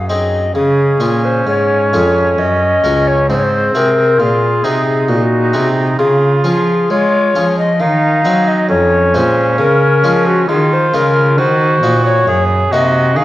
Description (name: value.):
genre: classical, baroque-style sonata movement with continuo.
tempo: 67 BPM.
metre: 3/4.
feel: straight.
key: Db major.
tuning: A4 = 440 Hz.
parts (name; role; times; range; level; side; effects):
mellow hollow tenor recorder; melody; 0.0-13.2 s; Gb4 to F5; -15 LUFS; left 3 dB; none.
warm oboe; second line; 0.0-13.2 s; C4 to Ab4; -17 LUFS; right 2 dB; none.
harpsichord; accompaniment; 0.0-13.2 s; Db2 to Bb4; -18 LUFS; equal; none.
rich cello; bass; 0.0-13.2 s; Db2 to Ab3; -16 LUFS; right 1 dB; none.
room: wet concert hall reverb, RT60 1.7 s.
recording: worn, warbling old tape, cassette tape, warbly pitch drift.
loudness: -10 LUFS.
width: side -15 dB against mid.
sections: 0.6-13.2 A section.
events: none.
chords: 0.0 Ab; 0.6 Db; 2.4 Gb; 3.3 Ab7; 6.0 Db; 7.8 Cdim/Eb; 8.7 Db/F; 11.4 Ebm.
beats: | 0.56 1.47 2.39 | 3.29 4.20 5.09 | 5.99 6.91 7.81 | 8.70 9.60 10.49 | 11.38 12.27 13.16.